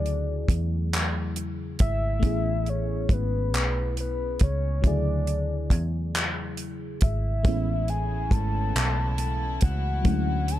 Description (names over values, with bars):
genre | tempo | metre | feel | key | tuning
slow six-eight R&B | 46 BPM (dotted quarters) | 6/8 | straight | A major | A4 = 440 Hz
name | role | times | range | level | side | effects
soft octave-layered synth lead | melody | 0.0-10.6 s | B4 to A5 | -32 LUFS | left 2 dB | chorus
mellow FM electric piano | accompaniment | 0.0-10.6 s | C#3 to G#4 | -33 LUFS | left 2 dB | chorus, phaser
vintage muted fingered electric bass | bass | 0.0-10.6 s | G#1 to E2 | -27 LUFS | equal | none
damped 70s drum kit | drums | 0.1-10.6 s | handclaps, hi-hat, kick drum | -24 LUFS | equal | none
clear studio string section | sustained chords | 7.4-10.6 s | C#3 to E4 | -39 LUFS | equal | none
room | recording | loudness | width
small room ambience | dark, warm production | -23 LUFS | side -13 dB against mid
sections
0.0-10.6 A section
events
none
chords
0.0 Dmaj9#11; 2.2 Amaj9; 4.8 Dmaj9#11; 7.4 Amaj9; 10.1 Dmaj9#11